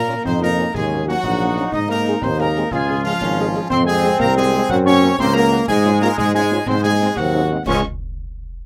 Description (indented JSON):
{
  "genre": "military-style march for wind band",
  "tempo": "121 BPM (dotted quarters)",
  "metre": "6/8",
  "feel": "straight",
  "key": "Db major",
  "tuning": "A4 = 440 Hz",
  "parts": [
    { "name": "warm trumpet section", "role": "melody", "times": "0.0-7.8 s", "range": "Db4 to Eb5", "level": "-28 LUFS", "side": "equal", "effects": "none" },
    { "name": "bright piccolo", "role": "second line", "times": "0.0-7.8 s", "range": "F5 to Eb6", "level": "-26 LUFS", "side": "equal", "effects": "none" },
    { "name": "warm euphonium", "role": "second line", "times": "0.0-7.8 s", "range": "F3 to Eb4", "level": "-24 LUFS", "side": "equal", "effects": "none" },
    { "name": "warm tuba", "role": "bass", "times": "0.0-7.8 s", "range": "Ab1 to Bb2", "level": "-22 LUFS", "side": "equal", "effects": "none" },
    { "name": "mellow French horn section", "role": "accompaniment", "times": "0.1-7.8 s", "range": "Ab3 to Ab4", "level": "-28 LUFS", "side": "equal", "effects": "none" },
    { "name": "concert snare drum, concert bass drum and clash cymbals", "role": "drums", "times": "0.1-7.8 s", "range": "none", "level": "-33 LUFS", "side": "equal", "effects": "none" },
    { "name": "warm trombone section", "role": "sustained chords", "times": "0.2-7.8 s", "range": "F3 to F4", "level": "-26 LUFS", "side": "equal", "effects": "none" }
  ],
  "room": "moderate booth ambience, RT60 0.2 s",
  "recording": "none",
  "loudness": "-17 LUFS",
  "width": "mono",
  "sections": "0.0-7.7 A section",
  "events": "none",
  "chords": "0.0 Bbm; 0.7 Ebm7; 1.7 Ab; 2.7 Db; 3.7 Fm; 4.7 Gb; 5.7 Db/Ab; 6.7 Ab7; 7.7 Db",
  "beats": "0.25 | 0.74 1.24 | 1.73 2.22 | 2.72 3.21 | 3.71 4.20 | 4.70 5.19 | 5.68 6.18 | 6.67 7.17 | 7.66"
}